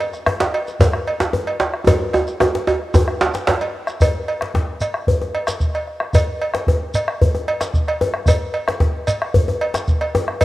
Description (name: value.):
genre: west african traditional, West African drum ensemble.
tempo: 112 BPM.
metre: 4/4.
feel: straight.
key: none.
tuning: none.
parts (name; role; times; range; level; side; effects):
cowbell; percussion; 0.0-10.4 s; none; -24 LUFS; right 2 dB; none.
bombo; percussion; 0.1-10.4 s; none; -20 LUFS; equal; none.
shekere; percussion; 0.1-10.4 s; none; -25 LUFS; equal; none.
djembe; percussion; 0.3-10.4 s; none; -20 LUFS; left 2 dB; none.
djembe; percussion; 0.4-3.6 s; none; -19 LUFS; right 3 dB; none.
room: light reverb, studio reverb.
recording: home recording on cassette.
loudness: -16 LUFS.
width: side -16 dB against mid.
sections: 0.0-4.0 A section; 4.0-10.4 A section.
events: drum fill 1.9-4.0.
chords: none.